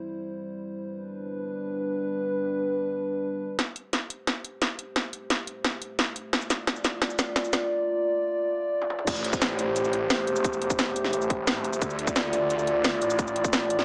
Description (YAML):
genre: dark technical drum and bass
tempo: 175 BPM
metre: 4/4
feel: straight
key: A minor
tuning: A4 = 440 Hz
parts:
  - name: dark analog pad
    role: sustained chords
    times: 0.0-13.8 s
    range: G3 to D5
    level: -31 LUFS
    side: equal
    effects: chorus, sidechain pumping
  - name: drum and bass drum kit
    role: drums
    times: 3.6-13.8 s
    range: crash cymbal, hi-hat, shaker, snare drum, toms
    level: -29 LUFS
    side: equal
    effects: none
  - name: snarling distorted saw bass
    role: bass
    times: 9.1-13.8 s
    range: E1 to D2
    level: -34 LUFS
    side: equal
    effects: distortion, overdrive, sidechain pumping
  - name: electronic kick drum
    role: drums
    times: 9.1-13.5 s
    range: none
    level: -30 LUFS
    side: equal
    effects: overdrive
room: moderate digital room reverb, RT60 1.1 s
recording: high-pass filter, small speaker sound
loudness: -28 LUFS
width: mono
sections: 0.0-3.6 A section; 3.6-9.1 B section; 9.1-13.8 C section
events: build-up 3.6-9.1; drum fill 3.6-7.7, 8.8; filter sweep 3.6-9.1; drop 9.1-13.8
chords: 0.0 C; 0.8 G; 3.6 Am7; 6.3 Dm; 9.1 Am7; 11.8 Dm